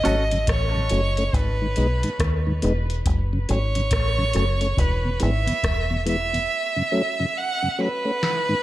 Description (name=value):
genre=dub reggae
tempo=70 BPM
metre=4/4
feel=swing 63% on 16ths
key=F# dorian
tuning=A4 = 439 Hz
part: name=bright violin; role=melody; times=0.0-8.6 s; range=B4 to F#5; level=-25 LUFS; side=right 2 dB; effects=dub echo
part: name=deep dub fingered electric bass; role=bass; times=0.0-6.5 s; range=E1 to D#2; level=-23 LUFS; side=equal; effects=none
part: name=mellow tonewheel organ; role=accompaniment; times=0.1-8.5 s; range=E2 to D#4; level=-27 LUFS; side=left 1 dB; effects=slow rotary speaker
part: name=soft vintage rhythm box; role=drums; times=0.1-8.5 s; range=hi-hat, kick drum, rim click, snare drum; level=-26 LUFS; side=equal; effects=none
room=light reverb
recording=none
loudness=-20 LUFS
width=side -15 dB against mid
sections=0.0-8.6 A section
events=drum fill 8.2-8.6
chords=0.0 F#m; 1.3 G#m; 3.1 F#m; 4.8 E; 6.5 F#m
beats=0.48 1.34 2.20 | 3.06 3.92 4.78 5.63 | 6.50 7.36 8.21